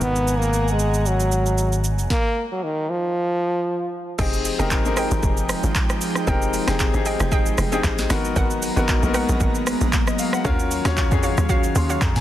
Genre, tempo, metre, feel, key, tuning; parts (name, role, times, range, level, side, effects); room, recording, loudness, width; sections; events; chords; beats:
amapiano; 115 BPM; 4/4; swing 55% on 16ths; F phrygian; A4 = 440 Hz
clear French horn; melody; 0.0-3.9 s; Eb3 to Cb4; -22 LUFS; equal; tape echo
clear baby grand piano; accompaniment; 0.0-12.2 s; Cb3 to C6; -26 LUFS; left 4 dB
airy breathy pad; sustained chords; 0.0-12.2 s; Eb3 to Bb5; -29 LUFS; right 1 dB; chorus, sidechain pumping
fingered electric bass; bass; 0.0-2.1 s; Ab1; -21 LUFS; equal
afro-pop drum kit; drums; 0.0-12.2 s; crash cymbal, handclaps, hi-hat, kick drum, rim click, shaker, snare drum, toms; -23 LUFS; equal
hollow square pluck; stabs; 4.2-12.0 s; Gb4 to G5; -29 LUFS; right 4 dB; chorus, tape echo
tight log drum bass; bass; 4.2-12.2 s; F1 to F2; -24 LUFS; equal
light reverb; dense, heavily limited modern master; -18 LUFS; side -13 dB against mid
0.0-4.2 A section; 4.2-12.2 B section
stop 2.1-4.2; drop 4.2-12.2
0.0 Abm9; 2.1 N.C.; 4.2 Fm9; 8.1 Abm9; 10.4 Ebm9
| 0.01 0.54 1.06 1.58 | 2.10 2.62 3.15 3.67 | 4.19 4.71 5.23 5.75 | 6.28 6.80 7.32 7.84 | 8.36 8.88 9.41 9.93 | 10.45 10.97 11.49 12.02